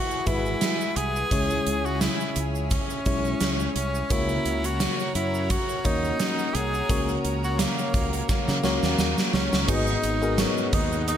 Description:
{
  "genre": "1980s-style pop",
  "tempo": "86 BPM",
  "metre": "4/4",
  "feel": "swing 55% on 16ths",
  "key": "unclear",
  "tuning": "A4 = 441 Hz",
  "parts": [
    { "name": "clear tenor saxophone", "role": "melody", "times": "0.0-11.2 s", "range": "A#3 to G#4", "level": "-29 LUFS", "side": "equal", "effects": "tape echo" },
    { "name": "FM electric piano", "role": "accompaniment", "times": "0.0-11.2 s", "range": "G#2 to D#5", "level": "-29 LUFS", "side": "left 2 dB", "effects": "chorus" },
    { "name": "lush unison pad", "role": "sustained chords", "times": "0.0-11.2 s", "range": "E3 to A#4", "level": "-34 LUFS", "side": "equal", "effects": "chorus" },
    { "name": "tube shaker", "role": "percussion", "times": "0.1-11.2 s", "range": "none", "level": "-41 LUFS", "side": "right 13 dB", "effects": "none" },
    { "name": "modern bright fingered electric bass", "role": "bass", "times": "0.3-11.1 s", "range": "G#1 to C#3", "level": "-29 LUFS", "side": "equal", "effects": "none" },
    { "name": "gated 80s drum kit", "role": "drums", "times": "0.3-11.2 s", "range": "crash cymbal, hi-hat, kick drum, snare drum, tambourine", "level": "-26 LUFS", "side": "right 1 dB", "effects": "gated reverb" },
    { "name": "synth chime", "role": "second line", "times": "9.3-11.2 s", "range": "C#6 to D#6", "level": "-37 LUFS", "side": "right 2 dB", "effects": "ensemble chorus, tremolo, tape echo" }
  ],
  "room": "light reverb",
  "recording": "none",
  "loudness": "-22 LUFS",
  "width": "side -9 dB against mid",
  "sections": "0.0-9.7 A section; 9.7-11.2 B section",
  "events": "drum fill 8.3-9.7",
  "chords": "0.0 Eadd9; 1.3 C#m; 4.1 F#; 9.7 G#m7"
}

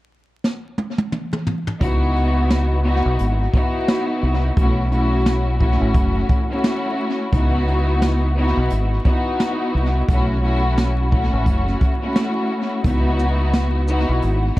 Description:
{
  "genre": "hip hop, boom-bap hip-hop",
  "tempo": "87 BPM",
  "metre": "4/4",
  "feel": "swing 59% on 16ths",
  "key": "C# minor",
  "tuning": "A4 = 440 Hz",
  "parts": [
    { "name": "jazz brush drum kit", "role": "drums", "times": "0.4-14.6 s", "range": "hi-hat, kick drum, shaker, snare drum, toms", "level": "-21 LUFS", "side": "equal", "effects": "tape echo" },
    { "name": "warm studio string section", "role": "accompaniment", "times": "1.8-14.6 s", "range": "A3 to F#4", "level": "-21 LUFS", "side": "left 1 dB", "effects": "cassette tape, high-pass filter, low-pass filter, tape echo" },
    { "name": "deep dub fingered electric bass", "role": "bass", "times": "1.8-14.5 s", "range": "F#1 to C#2", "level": "-19 LUFS", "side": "equal", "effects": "none" }
  ],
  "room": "little or no reverb",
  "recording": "echo-heavy mix, vinyl crackle",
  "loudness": "-17 LUFS",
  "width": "side -17 dB against mid",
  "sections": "0.0-1.8 A section; 1.8-14.6 B section",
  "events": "drum fill 0.4-1.8",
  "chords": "0.0 N.C.; 1.8 C#m11; 4.6 B7sus4; 7.3 C#m11; 10.1 B7sus4; 12.8 C#m11"
}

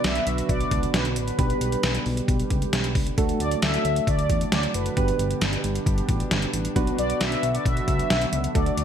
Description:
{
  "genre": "synth-pop",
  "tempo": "134 BPM",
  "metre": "4/4",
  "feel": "straight",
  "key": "unclear",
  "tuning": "A4 = 442 Hz",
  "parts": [
    { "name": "mellow synth brass", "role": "melody", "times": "0.0-8.8 s", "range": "B4 to E5", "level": "-28 LUFS", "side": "left 1 dB", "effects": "chorus, digital delay" },
    { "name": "soft electric-piano-like synth keys", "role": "accompaniment", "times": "0.0-8.8 s", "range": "A3 to B4", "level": "-30 LUFS", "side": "right 4 dB", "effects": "chorus" },
    { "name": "chorused pulse-width pad", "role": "sustained chords", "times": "0.0-8.8 s", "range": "A2 to G4", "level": "-31 LUFS", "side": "right 1 dB", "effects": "none" },
    { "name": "fat analog bass", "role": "bass", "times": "0.0-8.8 s", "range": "F#1 to E2", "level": "-27 LUFS", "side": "left 1 dB", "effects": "none" },
    { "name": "detuned 8-bit digital drum machine", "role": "drums", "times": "0.0-8.8 s", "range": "hi-hat, kick drum, snare drum", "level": "-25 LUFS", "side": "equal", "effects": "gated reverb" }
  ],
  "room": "light reverb",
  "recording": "bright 1980s-style digital production",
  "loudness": "-21 LUFS",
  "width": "side -8 dB against mid",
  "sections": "0.0-8.8 A section",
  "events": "none",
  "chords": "0.0 Bm; 1.4 G/B; 3.2 D; 5.0 G; 6.8 Bm"
}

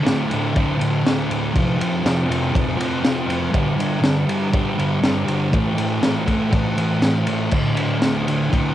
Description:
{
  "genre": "garage rock duo or trio",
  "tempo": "121 BPM",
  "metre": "4/4",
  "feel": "straight",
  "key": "unclear",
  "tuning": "A4 = 439 Hz",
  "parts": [
    { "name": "fuzz guitar", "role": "riff", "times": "0.0-8.7 s", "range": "D2 to A3", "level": "-20 LUFS", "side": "equal", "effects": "distortion, cassette tape" },
    { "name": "crunchy breakbeat drum kit", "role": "drums", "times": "0.1-8.6 s", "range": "crash cymbal, kick drum, ride cymbal, snare drum", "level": "-21 LUFS", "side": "equal", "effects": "cassette tape" }
  ],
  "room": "light reverb, small room ambience",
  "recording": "home recording on cassette",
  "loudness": "-17 LUFS",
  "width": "side -12 dB against mid",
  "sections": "0.0-8.7 A section",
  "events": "none",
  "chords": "0.0 D5; 1.5 F5; 3.5 G5; 5.5 A5; 7.5 D5"
}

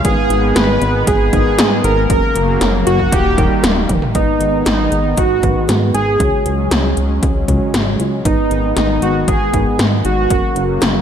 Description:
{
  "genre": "synthwave",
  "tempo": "117 BPM",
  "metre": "4/4",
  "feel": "straight",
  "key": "G# minor",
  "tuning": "A4 = 436 Hz",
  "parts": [
    { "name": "soft supersaw", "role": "melody", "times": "0.0-10.8 s", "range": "D#4 to B4", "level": "-17 LUFS", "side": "right 1 dB", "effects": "tape echo" },
    { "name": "warm analog pad", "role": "sustained chords", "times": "0.0-11.0 s", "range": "C#3 to C#4", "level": "-22 LUFS", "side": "left 2 dB", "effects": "chorus, vintage 12-bit sampler grit, sidechain pumping" },
    { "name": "mellow tine electric piano", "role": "stabs", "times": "0.0-11.0 s", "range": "G#2 to C#5", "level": "-23 LUFS", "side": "right 3 dB", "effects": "medium stereo tremolo, tape echo" },
    { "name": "chorused synth bass", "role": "bass", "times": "0.0-11.0 s", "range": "D#1 to G#2", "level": "-18 LUFS", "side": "equal", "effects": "sidechain pumping" },
    { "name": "80s electronic pad drums", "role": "drums", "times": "0.0-10.9 s", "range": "hi-hat, snare drum, toms", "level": "-19 LUFS", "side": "left 1 dB", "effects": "gated reverb on snare and toms, overdrive" },
    { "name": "electronic kick drum", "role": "drums", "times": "0.0-10.4 s", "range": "none", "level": "-18 LUFS", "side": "equal", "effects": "overdrive" }
  ],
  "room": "light reverb, digital ambience",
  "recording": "none",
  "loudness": "-12 LUFS",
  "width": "side -8 dB against mid",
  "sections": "0.0-4.2 A section; 4.2-11.0 B section",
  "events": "drum fill 3.6-4.2",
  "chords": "0.0 G#m; 2.1 F#; 3.1 D#; 4.2 G#m; 6.2 C#sus4; 8.3 G#m; 10.3 F#"
}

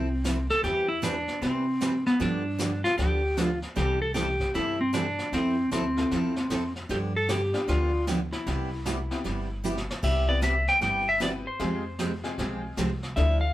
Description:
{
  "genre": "country, western swing",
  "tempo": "153 BPM",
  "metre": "4/4",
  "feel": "swing 64% on 8ths",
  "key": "C major",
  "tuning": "A4 = 440 Hz",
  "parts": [
    { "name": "clean lap steel guitar", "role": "melody", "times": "0.0-13.5 s", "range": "B3 to G5", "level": "-26 LUFS", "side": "equal", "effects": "none" },
    { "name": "picked steel-string acoustic guitar", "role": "accompaniment", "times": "0.0-13.4 s", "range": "C3 to B4", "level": "-32 LUFS", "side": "right 2 dB", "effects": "none" },
    { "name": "upright bass", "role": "bass", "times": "0.0-13.5 s", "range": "G1 to C3", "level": "-30 LUFS", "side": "equal", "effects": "none" },
    { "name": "vintage brush drum kit", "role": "drums", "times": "0.2-13.5 s", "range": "brushed snare drum, crash cymbal, hi-hat, kick drum, snare drum", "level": "-35 LUFS", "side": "equal", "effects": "none" },
    { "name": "tack piano", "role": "accompaniment", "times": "6.0-13.5 s", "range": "Ab3 to B4", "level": "-35 LUFS", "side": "left 3 dB", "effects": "none" }
  ],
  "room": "moderate small room reverb, RT60 0.5 s",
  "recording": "band playing live in one room",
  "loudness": "-24 LUFS",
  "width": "side -14 dB against mid",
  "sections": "0.0-10.0 A section; 10.0-13.5 B section",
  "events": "drum fill 9.6-10.0",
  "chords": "0.0 Fmaj7; 0.6 Cmaj7/E; 2.2 G7; 3.8 C6; 5.3 Fmaj7; 6.9 G7; 8.5 Cmaj7; 11.6 Fmadd9"
}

